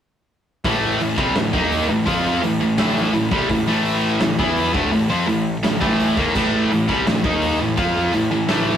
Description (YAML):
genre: heavy metal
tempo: 84 BPM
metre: 4/4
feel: straight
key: A minor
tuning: A4 = 440 Hz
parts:
  - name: fuzz picked electric bass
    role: bass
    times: 0.6-8.8 s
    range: A1 to F2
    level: -27 LUFS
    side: equal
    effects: overdrive
  - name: big rock drum kit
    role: drums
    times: 0.6-8.7 s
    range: crash cymbal, hi-hat, kick drum, snare drum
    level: -24 LUFS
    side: right 1 dB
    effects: none
  - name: high-gain distorted guitar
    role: riff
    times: 0.7-8.8 s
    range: A2 to F4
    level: -18 LUFS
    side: equal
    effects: distortion
room: wet small room reverb, RT60 0.5 s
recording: rough rehearsal-room recording, warm saturation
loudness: -16 LUFS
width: side -9 dB against mid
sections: 0.6-8.8 A section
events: none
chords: 0.6 Am